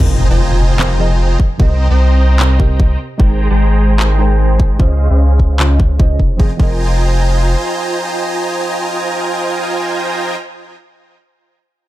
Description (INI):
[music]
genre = future bass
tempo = 150 BPM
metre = 4/4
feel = swing 54% on 16ths, half-time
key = F minor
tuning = A4 = 441 Hz
[part]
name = soft round pluck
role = accompaniment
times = 0.0-10.8 s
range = C3 to G5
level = -23 LUFS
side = right 3 dB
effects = analog chorus, sidechain pumping, digital delay
[part]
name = dense compressed supersaw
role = riff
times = 0.0-10.4 s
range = Ab3 to Bb5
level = -18 LUFS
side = right 1 dB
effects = sidechain pumping, low-pass filter, digital delay
[part]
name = saturated sub bass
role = bass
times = 0.0-7.6 s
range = F1 to Db2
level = -12 LUFS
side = equal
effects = sidechain pumping
[part]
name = electronic kick drum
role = drums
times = 0.0-6.7 s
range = none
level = -12 LUFS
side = equal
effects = none
[part]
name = trap drum kit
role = drums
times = 0.0-5.7 s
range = crash cymbal, handclaps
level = -20 LUFS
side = left 1 dB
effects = none
[part]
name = impact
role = sound effects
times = 0.0-1.6 s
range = none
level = -19 LUFS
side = equal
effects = none
[sound]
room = little or no reverb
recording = none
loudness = -11 LUFS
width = side -15 dB against mid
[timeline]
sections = 0.0-6.4 A section; 6.4-9.6 B section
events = impact 0.0-1.6; filter sweep on sub bass 0.0-6.4; filter sweep on supersaw synth 0.0-6.4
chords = 0.0 Fm11; 1.4 Cm7; 3.0 Abmaj9; 4.8 Dbmaj7; 6.4 Fm11